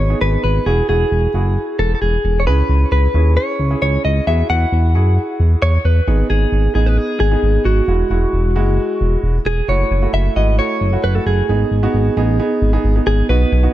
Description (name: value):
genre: synth-pop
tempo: 133 BPM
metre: 4/4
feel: straight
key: unclear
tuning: A4 = 440 Hz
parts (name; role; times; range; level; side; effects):
- direct-recorded clean electric guitar; melody; 0.0-13.7 s; F#4 to F#5; -20 LUFS; equal; wide subtle chorus, ping-pong delay
- warm concert grand piano; accompaniment; 0.0-13.7 s; G#3 to B4; -22 LUFS; right 3 dB; none
- smooth gliding synth bass; bass; 0.0-13.7 s; E1 to F#2; -15 LUFS; equal; none
room: light reverb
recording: dark, warm production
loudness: -13 LUFS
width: side -13 dB against mid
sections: 0.0-9.7 A section; 9.7-13.7 B section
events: none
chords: 0.0 G#m; 0.7 Eadd9; 2.5 C#m; 4.3 Eadd9; 6.1 G#m; 7.9 Eadd9; 9.7 F#m7; 11.5 G#m